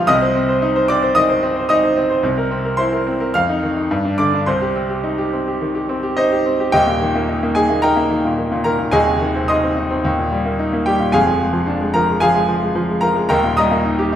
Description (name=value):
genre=classical, virtuoso piano study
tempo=110 BPM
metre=4/4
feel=rubato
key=C minor, Eb major from 6.7 s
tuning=A4 = 440 Hz
part: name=bright grand piano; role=solo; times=0.0-14.2 s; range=Eb1 to F6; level=-15 LUFS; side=equal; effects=none
room=wet recital hall reverb, RT60 1.5 s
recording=minimal, uncompressed stereo recording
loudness=-15 LUFS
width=side -10 dB against mid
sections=0.0-6.7 A section; 6.7-14.2 B section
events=none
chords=0.1 Cm; 2.2 C7; 3.3 Ebsus2/F; 3.9 G5; 4.5 Cm; 6.7 Eb; 8.9 Ab/Eb; 10.0 Eb; 11.1 Ddim/F; 13.3 Eb